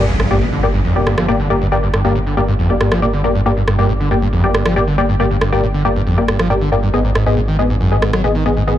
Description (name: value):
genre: driving peak-time techno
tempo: 138 BPM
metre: 4/4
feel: straight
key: G minor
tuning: A4 = 440 Hz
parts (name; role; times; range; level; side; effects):
- screaming distorted acid line; riff; 0.0-8.7 s; F2 to F#3; -18 LUFS; equal; distortion, wide subtle chorus
- supersaw stab; stabs; 0.0-8.7 s; Bb3 to Eb5; -18 LUFS; left 2 dB; low-pass filter, tape echo
- growling FM bass; bass; 0.0-8.8 s; G1 to Ab1; -19 LUFS; equal; none
- impact; sound effects; 0.0-1.7 s; none; -23 LUFS; equal; none
- electronic rim click; drums; 0.2-8.2 s; none; -21 LUFS; right 1 dB; overdrive
room: light reverb, digital ambience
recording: none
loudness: -13 LUFS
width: side -12 dB against mid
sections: 0.0-8.8 A section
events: impact 0.0-1.7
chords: 0.0 Gm; 6.9 Abm